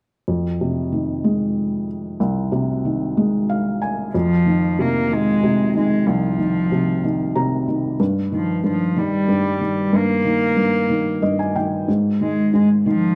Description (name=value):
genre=pop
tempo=62 BPM (dotted quarters)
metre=6/8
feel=straight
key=unclear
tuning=A4 = 440 Hz
part: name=felt-muted upright piano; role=accompaniment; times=0.3-13.2 s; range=C2 to Bb5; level=-21 LUFS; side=equal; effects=none
part: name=warm cello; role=melody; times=4.2-13.2 s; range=F3 to Bb3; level=-22 LUFS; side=equal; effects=none
room=moderate spring reverb, RT60 1.5 s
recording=none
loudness=-20 LUFS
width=mono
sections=0.3-4.1 A section; 4.1-13.2 B section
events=felt piano fill 3.2-4.1, 7.0-8.0, 10.9-11.9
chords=0.3 Fm7; 8.0 Fm11/G (rootless); 11.9 Ab5